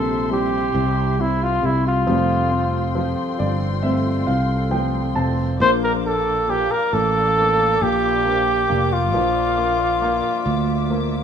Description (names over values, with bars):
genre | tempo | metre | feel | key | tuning
pop | 68 BPM | 4/4 | straight | Bb lydian | A4 = 441 Hz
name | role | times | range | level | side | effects
clear flugelhorn | melody | 0.0-11.2 s | E4 to C5 | -19 LUFS | right 1 dB | tape echo
clear baby grand piano | accompaniment | 0.0-11.2 s | C3 to A5 | -26 LUFS | left 1 dB | none
dark studio string section | sustained chords | 0.0-11.2 s | Bb3 to D6 | -30 LUFS | left 2 dB | none
flamenco guitar | arpeggios | 0.0-11.2 s | F2 to G4 | -30 LUFS | left 1 dB | none
sustaining fretless electric bass | bass | 0.0-11.2 s | F1 to D2 | -23 LUFS | equal | wide subtle chorus
room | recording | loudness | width
little or no reverb | rough home demo mix, studio ambience | -17 LUFS | side -8 dB against mid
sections
0.0-11.2 A section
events
grand piano fill 3.0-5.6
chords
0.0 C; 2.1 Fadd9; 5.6 Bb